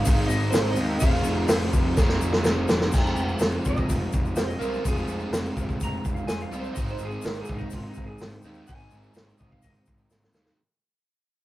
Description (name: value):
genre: garage rock duo or trio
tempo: 126 BPM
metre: 4/4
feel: straight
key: F minor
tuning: A4 = 440 Hz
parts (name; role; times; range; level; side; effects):
- clean lap steel guitar; melody; 0.0-10.5 s; Eb4 to Bb5; -34 LUFS; right 2 dB; none
- crunchy overdriven guitar; riff; 0.0-10.6 s; Ab2 to Ab4; -30 LUFS; right 1 dB; none
- fuzz picked electric bass; bass; 0.0-10.5 s; F1 to Eb2; -29 LUFS; equal; overdrive
- vintage drum kit; drums; 0.1-10.6 s; crash cymbal, hi-hat, kick drum, snare drum; -24 LUFS; equal; none
- tube shaker; percussion; 0.1-10.4 s; none; -41 LUFS; left 5 dB; none
room: moderate studio ambience, RT60 0.5 s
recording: rough rehearsal-room recording, warm saturation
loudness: -22 LUFS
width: side -16 dB against mid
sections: 0.0-2.9 A section; 2.9-10.6 B section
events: drum fill 2.0-2.9, 10.1-10.6; fade-out 2.9-10.6; electric slide guitar solo 2.9-10.6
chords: 0.0 Ab; 1.0 Fm; 6.8 Ab